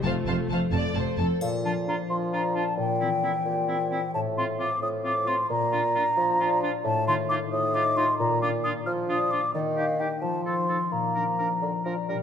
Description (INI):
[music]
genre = cinematic, playful, whimsical film cue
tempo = 88 BPM (dotted quarters)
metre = 6/8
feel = straight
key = Bb major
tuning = A4 = 439 Hz
[part]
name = rich chamber violin section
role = melody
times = 0.0-1.3 s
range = A5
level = -37 LUFS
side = left 3 dB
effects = none
[part]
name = mellow clarinet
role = second line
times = 0.0-12.2 s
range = C4 to F4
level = -40 LUFS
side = equal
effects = none
[part]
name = rich chamber viola section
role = accompaniment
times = 0.0-1.1 s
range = A3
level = -36 LUFS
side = right 1 dB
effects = none
[part]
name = concert harp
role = arpeggios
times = 0.0-12.2 s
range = A2 to F5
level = -31 LUFS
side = left 9 dB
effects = none
[part]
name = rich chamber cello section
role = bass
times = 0.0-1.3 s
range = F2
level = -30 LUFS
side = right 4 dB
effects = none
[part]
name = warm symphonic double bass section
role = bass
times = 0.0-1.3 s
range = F1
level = -32 LUFS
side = right 4 dB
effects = none
[part]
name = warm studio violin section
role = second line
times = 0.1-1.4 s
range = A4 to F5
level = -34 LUFS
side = right 1 dB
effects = none
[part]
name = mellow hollow concert flute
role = second line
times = 1.4-12.1 s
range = D5 to F6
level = -26 LUFS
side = left 1 dB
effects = none
[part]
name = mellow bassoon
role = accompaniment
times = 1.4-12.2 s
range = A2 to Bb3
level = -29 LUFS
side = right 3 dB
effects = none
[part]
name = triangle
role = percussion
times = 1.4-2.3 s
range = none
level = -45 LUFS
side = left 4 dB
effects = none
[part]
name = clear oboe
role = second line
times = 1.7-12.2 s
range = E4 to Bb4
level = -36 LUFS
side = right 3 dB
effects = none
[sound]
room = moderate concert hall reverb, RT60 1.9 s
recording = none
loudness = -23 LUFS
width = side -8 dB against mid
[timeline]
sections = 0.0-1.4 A section; 1.4-12.2 B section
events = none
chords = 0.0 F; 1.4 Bb; 2.8 C7/Bb; 4.1 F/A; 5.5 Bb; 6.8 F7/A; 8.2 Bb; 9.5 Ebmaj7; 10.2 F7; 10.9 Bb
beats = | 0.03 0.72 | 1.42 2.10 | 2.78 3.46 | 4.14 4.82 | 5.50 6.17 | 6.85 7.52 | 8.19 8.86 | 9.54 10.22 | 10.92 11.62